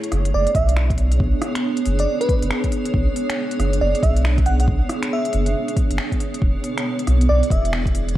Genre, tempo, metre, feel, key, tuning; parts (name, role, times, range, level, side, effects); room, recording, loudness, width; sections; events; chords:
future garage; 138 BPM; 4/4; swing 63% on 16ths; B dorian; A4 = 443 Hz
granular cloud pad; sustained chords; 0.0-8.2 s; B3 to D5; -24 LUFS; right 1 dB; built-in reverb, sidechain pumping
organic electronic drum kit; drums; 0.0-8.1 s; finger snaps, hi-hat, rim click; -29 LUFS; equal
soft dub sub bass; bass; 0.1-8.1 s; E1 to B1; -19 LUFS; equal; sidechain pumping
bell-like FM electric piano; melody; 0.3-7.7 s; B4 to F#5; -24 LUFS; right 2 dB; chorus, phaser, analog delay
electronic kick drum; drums; 0.5-8.2 s; -20 LUFS; equal
light reverb, digital ambience; vinyl crackle; -17 LUFS; side -14 dB against mid
0.0-8.2 A section
0.0 Bm69; 6.4 E7